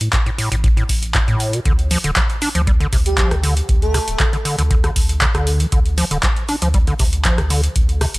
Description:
acid house; 118 BPM; 4/4; straight; A4 = 439 Hz
warm sub bass; bass; 0.0-8.2 s; D1 to A2; -19 LUFS; equal; sidechain pumping
booming analog drum machine; drums; 0.0-8.2 s; handclaps, hi-hat, rim click; -22 LUFS; equal
acid bass, square; riff; 0.1-8.1 s; A2 to D4; -22 LUFS; equal; overdrive, sidechain pumping, tape echo
electronic kick drum; drums; 0.1-7.9 s; -18 LUFS; equal
airy dreamy lead; melody; 3.1-4.2 s; G4 to A4; -26 LUFS; right 2 dB; chorus, tape echo
little or no reverb; dry, gritty hardware recording; -14 LUFS; side -22 dB against mid
0.0-8.2 A section
filter sweep on acid bass 0.0-8.2

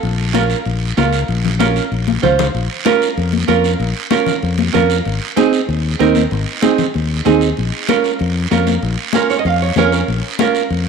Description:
latin, cumbia; 191 BPM; 4/4; straight; Bb minor; A4 = 440 Hz
fingered electric bass; bass; 0.0-10.9 s; Ab1 to F2; -18 LUFS; left 2 dB
congas; percussion; 0.0-10.9 s; -20 LUFS; left 13 dB
guiro; percussion; 0.0-10.9 s; -26 LUFS; right 8 dB
nylon-string guitar; accompaniment; 0.3-10.6 s; C4 to F5; -16 LUFS; right 8 dB
moderate echo chamber reverb, RT60 1.5 s; 1960s-style stereo with parts hard left and right; -13 LUFS; side -6 dB against mid
0.0-2.5 A section; 2.5-10.9 B section
drum fill 2.1-2.5; nylon-string guitar fill 9.1-10.1
0.0 Bbm; 5.1 Ab; 7.6 Bbm

